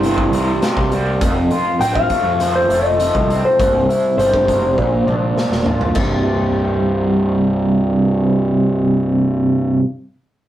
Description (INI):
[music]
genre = psychedelic rock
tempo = 101 BPM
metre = 4/4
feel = straight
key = C mixolydian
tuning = A4 = 440 Hz
[part]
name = electric slide guitar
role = melody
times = 0.0-5.9 s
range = E4 to G5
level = -17 LUFS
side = left 1 dB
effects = low-pass filter
[part]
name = biting overdriven guitar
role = riff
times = 0.0-9.8 s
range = C2 to F4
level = -17 LUFS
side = right 1 dB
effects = harmonic tremolo, low-pass filter
[part]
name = fuzz picked electric bass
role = bass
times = 0.0-9.8 s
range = C1 to F2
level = -22 LUFS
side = equal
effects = overdrive
[part]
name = raw garage drum kit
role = drums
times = 0.0-6.1 s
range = crash cymbal, hi-hat, kick drum, snare drum, toms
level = -23 LUFS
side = equal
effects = none
[sound]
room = wet studio ambience, RT60 0.5 s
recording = rough rehearsal-room recording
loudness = -14 LUFS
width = side -12 dB against mid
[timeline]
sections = 0.0-6.0 A section; 6.0-8.3 B section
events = electric slide guitar solo 0.0-6.0; filter sweep 0.0-6.0; drum fill 4.8-6.0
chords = 0.0 C; 1.2 F; 3.6 C; 4.8 Bb; 6.0 C